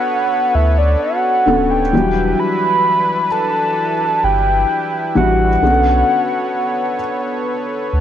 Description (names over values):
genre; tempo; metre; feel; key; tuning
R&B; 65 BPM; 4/4; straight; E dorian; A4 = 441 Hz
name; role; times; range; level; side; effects
soft octave-layered synth lead; melody; 0.0-7.9 s; D5 to B5; -16 LUFS; right 1 dB; chorus, phaser, analog delay
felt-muted upright piano; accompaniment; 0.0-8.0 s; D3 to A4; -20 LUFS; left 2 dB; none
warm analog pad; sustained chords; 0.0-8.0 s; E3 to C#5; -23 LUFS; equal; chorus
warm sub bass; bass; 0.5-8.0 s; D1 to D2; -17 LUFS; equal; none
room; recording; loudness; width
little or no reverb; dry, gritty hardware recording, cassette tape; -13 LUFS; side -10 dB against mid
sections
0.0-8.0 A section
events
none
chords
0.0 Bm9; 1.9 Em9; 5.6 Bm9